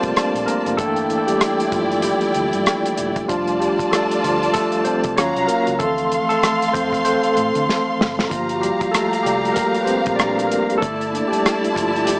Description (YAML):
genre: lush 1970s-style soul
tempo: 96 BPM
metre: 4/4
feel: swing 58% on 16ths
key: unclear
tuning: A4 = 440 Hz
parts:
  - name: warm studio string section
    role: second line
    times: 0.0-12.2 s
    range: E4 to C6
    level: -21 LUFS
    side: equal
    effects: none
  - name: barky tine electric piano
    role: accompaniment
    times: 0.0-12.2 s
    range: E3 to D5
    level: -19 LUFS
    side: equal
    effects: overdrive, medium tremolo
  - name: vintage muted fingered electric bass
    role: bass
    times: 0.0-12.1 s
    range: E1 to D3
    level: -32 LUFS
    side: equal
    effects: none
  - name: warm soul drum kit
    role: drums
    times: 0.0-12.2 s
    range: hi-hat, kick drum, rim click, snare drum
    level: -23 LUFS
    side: equal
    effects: none
room: light reverb, studio ambience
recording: small speaker sound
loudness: -16 LUFS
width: side -32 dB against mid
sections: 0.0-12.2 A section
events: tine electric piano solo 0.0-12.2; drum fill 7.7-8.3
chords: 0.0 Gm7; 0.8 Gm13; 3.3 F6; 5.2 Ebm9; 5.8 Dm9; 8.3 Gm7; 10.8 Gm13